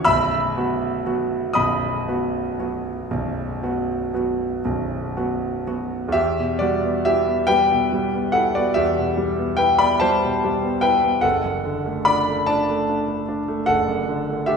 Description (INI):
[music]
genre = classical, romantic nocturne for solo piano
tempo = 38-51 BPM (dotted quarters)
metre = 12/8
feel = rubato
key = E minor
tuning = A4 = 440 Hz
[part]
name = clear concert grand piano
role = solo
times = 0.0-14.6 s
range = B0 to E6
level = -19 LUFS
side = equal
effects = none
[sound]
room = wet recital hall reverb, RT60 1.6 s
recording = recorded in a church or concert hall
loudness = -19 LUFS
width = side -5 dB against mid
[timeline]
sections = 0.0-6.2 A section; 6.2-14.6 B section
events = none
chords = 0.1 B; 6.2 Em; 11.2 D/F#